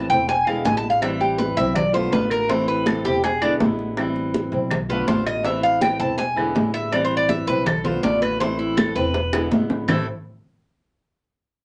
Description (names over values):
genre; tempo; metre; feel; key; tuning
latin, Cuban son and guajira; 162 BPM; 4/4; straight; A minor; A4 = 441 Hz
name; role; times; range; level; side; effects
flamenco guitar; accompaniment; 0.0-10.0 s; A2 to F4; -27 LUFS; equal; none
Cuban tres; arpeggios; 0.0-10.1 s; A3 to A5; -24 LUFS; equal; none
upright bass; bass; 0.0-10.1 s; E1 to B1; -33 LUFS; equal; none
bongos; percussion; 0.1-10.0 s; none; -31 LUFS; equal; none
congas; percussion; 0.1-10.0 s; none; -28 LUFS; equal; none
claves; percussion; 0.5-10.0 s; none; -34 LUFS; equal; none
room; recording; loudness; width
moderate club ambience, RT60 0.5 s; nothing above 10.5 kHz; -21 LUFS; mono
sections
0.0-9.9 A section; 9.9-11.4 B section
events
Cuban tres solo 0.0-9.9; drum fill 9.3-9.9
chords
0.3 E7; 1.0 Am7; 1.8 Bm7b5; 2.5 Am; 3.2 E7; 4.0 Am7; 4.7 Bm7b5; 5.5 Am; 6.2 E7; 6.9 Am7; 7.7 Bm7b5; 8.4 Am; 9.1 E7; 9.9 A5